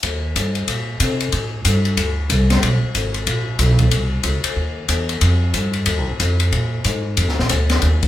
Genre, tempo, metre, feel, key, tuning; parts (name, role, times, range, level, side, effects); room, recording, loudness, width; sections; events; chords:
jazz, small-group swing and bop; 184 BPM; 4/4; swing 62% on 8ths; Eb major; A4 = 438 Hz
upright bass; bass; 0.0-8.1 s; Ab1 to C3; -18 LUFS; equal
open jazz drum kit; drums; 0.0-8.1 s; hi-hat, kick drum, ride cymbal, snare drum; -20 LUFS; left 4 dB
wet large studio reverb, RT60 1.4 s; band playing live in one room; -16 LUFS; side -13 dB against mid
0.0-8.1 A section